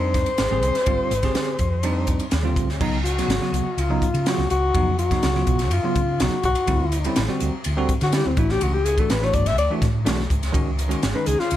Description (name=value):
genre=electric jazz fusion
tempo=124 BPM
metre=4/4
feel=straight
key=unclear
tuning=A4 = 438 Hz
part: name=mellow alto saxophone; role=melody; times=0.0-11.6 s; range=C4 to E5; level=-23 LUFS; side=left 3 dB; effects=none
part: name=bell-like tine electric piano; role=accompaniment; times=0.0-11.6 s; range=Db3 to Ab4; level=-26 LUFS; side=right 2 dB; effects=fast stereo tremolo
part: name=hollow-body short-scale fingered electric bass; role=bass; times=0.0-11.6 s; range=G1 to D3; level=-24 LUFS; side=equal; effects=none
part: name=crisp fusion drum kit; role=drums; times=0.1-11.6 s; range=crash cymbal, hi-hat, kick drum, ride cymbal, snare drum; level=-25 LUFS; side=equal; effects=none
room=light reverb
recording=none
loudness=-19 LUFS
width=side -12 dB against mid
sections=0.0-2.8 A section; 2.8-11.6 B section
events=alto saxophone solo 2.8-11.6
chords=0.0 Abmaj7; 2.8 Db9sus4; 6.7 D9sus4; 8.4 Asus4; 10.5 Dbsus4